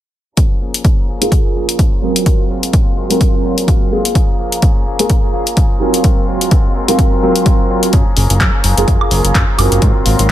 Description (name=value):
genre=filtered disco house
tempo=127 BPM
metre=4/4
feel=swing 57% on 16ths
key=Gb lydian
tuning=A4 = 444 Hz
part: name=warm studio violin section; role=sustained chords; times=0.4-10.3 s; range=Ab3 to C6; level=-25 LUFS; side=equal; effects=sidechain pumping, low-pass filter
part: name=direct-recorded clean electric guitar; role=riff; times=0.4-10.3 s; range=F3 to Ab4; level=-25 LUFS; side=left 6 dB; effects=sidechain pumping, low-pass filter
part: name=electronic kick drum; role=drums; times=0.4-10.3 s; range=none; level=-13 LUFS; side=equal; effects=none
part: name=punchy analog drum machine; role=drums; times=0.4-10.3 s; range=handclaps, hi-hat, woodblock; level=-18 LUFS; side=left 2 dB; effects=sidechain pumping on hats, sidechain pumping on perc
part: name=dark baby grand piano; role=accompaniment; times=1.2-10.3 s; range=Gb3 to Bb4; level=-17 LUFS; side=right 2 dB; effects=phaser, sidechain pumping, low-pass filter
part: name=fat analog bass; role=bass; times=7.9-10.3 s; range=Gb1 to Ab2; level=-14 LUFS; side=equal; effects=tube saturation, sidechain pumping, low-pass filter
room=little or no reverb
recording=none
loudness=-11 LUFS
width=side -12 dB against mid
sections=0.4-10.3 A section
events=filter sweep 0.4-10.3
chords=0.4 Gbmaj9; 2.3 Ab13; 4.2 Gbmaj9; 6.0 Ab13; 7.9 Gbmaj9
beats=| 0.38 0.85 1.32 1.79 | 2.27 2.74 3.21 3.68 | 4.16 4.63 5.10 5.57 | 6.04 6.52 6.99 7.46 | 7.93 8.41 8.88 9.35 | 9.82 10.30